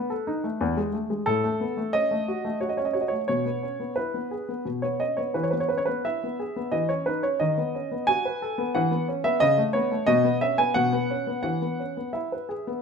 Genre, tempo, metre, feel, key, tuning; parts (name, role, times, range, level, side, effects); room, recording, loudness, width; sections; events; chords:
classical-period piano sonatina; 88 BPM; 3/4; straight; E major; A4 = 440 Hz
warm baby grand piano; solo; 0.0-12.8 s; E2 to G#5; -23 LUFS; equal
light reverb; close, detailed microphones; -23 LUFS; side -6 dB against mid
0.0-12.8 A section
0.0 B7; 0.6 E; 1.3 F#m/A; 3.3 E/B; 4.7 Badd9; 5.4 E; 6.7 C#m9/E; 7.4 B7/D#; 8.8 E5; 9.4 A/C#; 10.1 B69; 11.4 E